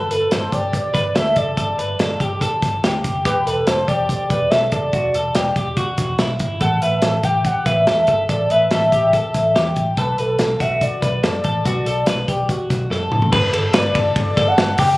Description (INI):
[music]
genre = jangly indie pop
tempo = 143 BPM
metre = 4/4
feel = straight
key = unclear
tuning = A4 = 442 Hz
[part]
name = twelve-string electric guitar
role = arpeggios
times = 0.0-15.0 s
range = E4 to B4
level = -22 LUFS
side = left 1 dB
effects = slapback echo
[part]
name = vintage muted fingered electric bass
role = bass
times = 0.0-15.0 s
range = E1 to F#2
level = -24 LUFS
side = equal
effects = none
[part]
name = warbly nostalgic lead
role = melody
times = 0.1-15.0 s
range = A4 to G5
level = -19 LUFS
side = equal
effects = chorus, slapback echo
[part]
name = modern studio drum kit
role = drums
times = 0.1-14.9 s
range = crash cymbal, hi-hat, kick drum, ride cymbal, snare drum, toms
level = -21 LUFS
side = equal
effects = none
[sound]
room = light reverb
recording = recorded on a phone in the room, club reverb, compression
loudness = -16 LUFS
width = side -19 dB against mid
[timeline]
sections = 0.0-13.3 A section; 13.3-15.0 B section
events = drum fill 12.9-13.3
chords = 0.0 Gsus2; 3.2 Emadd9; 6.6 A5; 10.0 Bm7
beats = 0.31 0.73 1.15 | 1.57 1.99 2.41 2.83 | 3.25 3.67 4.09 4.51 | 4.93 5.35 5.77 6.19 | 6.61 7.03 7.45 7.87 | 8.29 8.71 9.13 9.55 | 9.97 10.39 10.81 11.23 | 11.65 12.07 12.49 12.91 | 13.33 13.74 14.16 14.58